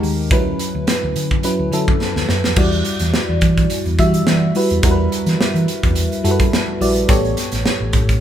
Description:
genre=polished 1980s jazz-funk pop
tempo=106 BPM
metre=4/4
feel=swing 54% on 16ths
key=E dorian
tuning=A4 = 440 Hz
part: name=FM electric piano with soft pad layer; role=accompaniment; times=0.0-8.2 s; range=F#3 to E5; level=-19 LUFS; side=equal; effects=chorus
part: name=hollow-body short-scale fingered electric bass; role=bass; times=0.0-8.2 s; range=A1 to E3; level=-20 LUFS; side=equal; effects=none
part: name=modern studio drum kit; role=drums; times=0.0-8.2 s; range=crash cymbal, hi-hat, kick drum, snare drum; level=-18 LUFS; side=equal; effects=none
room=light reverb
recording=band playing live in one room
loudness=-14 LUFS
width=side -10 dB against mid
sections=0.0-2.6 A section; 2.6-8.2 B section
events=drum fill 2.0-2.6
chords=0.3 Dmaj13; 2.6 Em9; 7.1 A9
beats=| 0.31 0.88 1.44 2.01 | 2.57 3.14 3.71 4.27 | 4.83 5.40 5.96 6.53 | 7.09 7.66

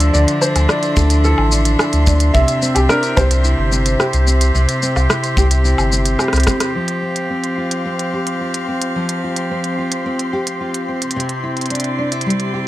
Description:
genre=folktronica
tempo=109 BPM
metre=4/4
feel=straight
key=F major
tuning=A4 = 439 Hz
part: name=felt-muted upright piano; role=melody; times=0.0-6.2 s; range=G4 to E5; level=-21 LUFS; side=equal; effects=vintage 12-bit sampler grit, tape echo
part: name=rich string quartet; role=sustained chords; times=0.0-12.7 s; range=C3 to F5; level=-22 LUFS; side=equal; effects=none
part: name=nylon-string guitar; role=arpeggios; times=0.0-12.7 s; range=C3 to A4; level=-21 LUFS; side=equal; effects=low-pass filter, tape echo
part: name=warm sub bass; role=bass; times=0.0-6.5 s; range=G1 to D2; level=-14 LUFS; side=equal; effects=none
part: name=organic electronic drum kit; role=drums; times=0.0-12.5 s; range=hi-hat, rim click, shaker, woodblock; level=-20 LUFS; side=left 1 dB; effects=none
part: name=flickering grainy texture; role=texture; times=0.0-12.7 s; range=C6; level=-28 LUFS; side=right 1 dB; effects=built-in reverb
part: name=kick drum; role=drums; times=1.0-6.6 s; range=none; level=-19 LUFS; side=equal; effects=none
room=light reverb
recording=none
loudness=-14 LUFS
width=side -15 dB against mid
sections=0.0-6.8 A section; 6.8-12.7 B section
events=drum fill 6.2-6.8; band accent 6.6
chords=0.0 Dmadd9; 2.3 C; 6.8 Fsus2; 11.2 Cadd9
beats=| 0.14 0.69 1.25 1.80 | 2.35 2.90 3.45 4.00 | 4.55 5.10 5.65 6.20 | 6.75 7.30 7.85 8.40 | 8.95 9.50 10.05 10.60 | 11.15 11.70 12.26

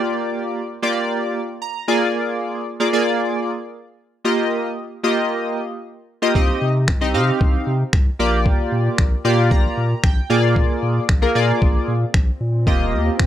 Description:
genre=dance-pop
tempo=114 BPM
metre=4/4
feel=straight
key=unclear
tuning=A4 = 440 Hz
part: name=chorused retro synth keys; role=accompaniment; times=0.0-13.1 s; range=Bb3 to C6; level=-19 LUFS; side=equal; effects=sidechain pumping
part: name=impact and swell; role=sound effects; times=0.0, 12.2-13.3 s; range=none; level=-34 LUFS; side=right 2 dB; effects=none
part: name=saturated sub bass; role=bass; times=6.4-13.3 s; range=Eb1 to C3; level=-20 LUFS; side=equal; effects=sidechain pumping
part: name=trip hop sampler-style drum kit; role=drums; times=6.4-13.3 s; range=finger snaps, kick drum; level=-17 LUFS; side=equal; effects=none
room=little or no reverb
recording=rough home demo mix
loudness=-17 LUFS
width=side -11 dB against mid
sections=0.0-13.3 A section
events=synth keys fill 1.4-2.1, 9.0-10.6; swell 12.2-13.3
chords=0.0 Bb6; 1.9 Bb7; 4.2 Ebadd9; 6.4 Cm; 8.2 Bb6; 10.3 Bb7; 12.7 Ebadd9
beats=| 0.04 0.56 1.09 1.62 | 2.14 2.67 3.19 3.72 | 4.25 4.77 5.30 5.83 | 6.35 6.88 7.41 7.93 | 8.46 8.98 9.51 10.04 | 10.56 11.09 11.62 12.14 | 12.67 13.20

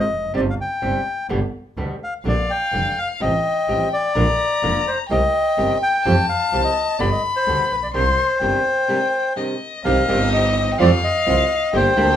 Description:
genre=tango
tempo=127 BPM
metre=4/4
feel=rubato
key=C minor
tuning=A4 = 443 Hz
part: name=bandoneon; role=melody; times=0.0-12.2 s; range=B4 to G5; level=-20 LUFS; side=left 2 dB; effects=none
part: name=flamenco guitar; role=accompaniment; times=0.0-12.1 s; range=B2 to G4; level=-23 LUFS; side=right 2 dB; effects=none
part: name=clear double bass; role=bass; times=0.0-12.2 s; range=F1 to F2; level=-22 LUFS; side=right 1 dB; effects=none
part: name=warm violin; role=second line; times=2.3-12.2 s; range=Eb5 to C6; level=-24 LUFS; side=left 4 dB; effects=none
part: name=clear studio string section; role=stabs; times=9.8-12.2 s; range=Bb3 to G4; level=-26 LUFS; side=right 3 dB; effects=none
room=light reverb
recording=minimal, uncompressed stereo recording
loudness=-17 LUFS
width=side -10 dB against mid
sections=0.0-9.8 A section; 9.8-12.2 B section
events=break 8.9-9.8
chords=0.3 Cm/G; 1.3 G; 2.3 Bb6; 3.2 Fadd9/A; 4.2 Bb; 5.1 Cm; 6.1 Fadd9; 7.0 G; 7.9 Cmadd9; 9.8 Cm; 10.8 Fsus2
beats=| 0.34 0.82 1.30 1.78 | 2.26 2.74 3.21 3.69 | 4.16 4.64 5.11 5.58 | 6.05 6.52 6.99 7.46 | 7.94 8.41 8.89 9.37 | 9.85 10.32 10.80 11.27 | 11.74

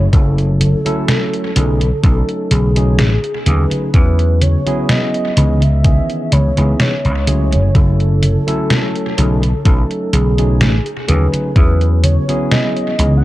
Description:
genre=vaporwave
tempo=63 BPM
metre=4/4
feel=straight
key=E major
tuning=A4 = 441 Hz
part: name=warm velvety synth lead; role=melody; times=0.0-13.2 s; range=G#4 to F#5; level=-22 LUFS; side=equal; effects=chorus, tape echo
part: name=bright tine electric piano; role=accompaniment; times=0.0-13.2 s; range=D#3 to A4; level=-21 LUFS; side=equal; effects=wide subtle chorus, analog delay
part: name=vintage slap bass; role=bass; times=0.0-13.2 s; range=F#1 to E2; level=-13 LUFS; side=equal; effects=none
part: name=detuned 8-bit digital drum machine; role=drums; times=0.1-13.2 s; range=congas, hi-hat, snare drum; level=-18 LUFS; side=equal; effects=analog delay
part: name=electronic kick drum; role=drums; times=0.1-11.8 s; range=none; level=-12 LUFS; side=equal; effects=none
room=little or no reverb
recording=echo-heavy mix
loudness=-12 LUFS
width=side -16 dB against mid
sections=0.0-13.2 A section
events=none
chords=0.0 F#m7; 1.6 B13; 3.9 E6; 5.4 C#m9; 7.3 F#m7; 9.2 B13; 11.6 E6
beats=| 0.13 1.08 2.04 2.99 | 3.94 4.89 5.85 6.80 | 7.75 8.70 9.66 10.61 | 11.56 12.51

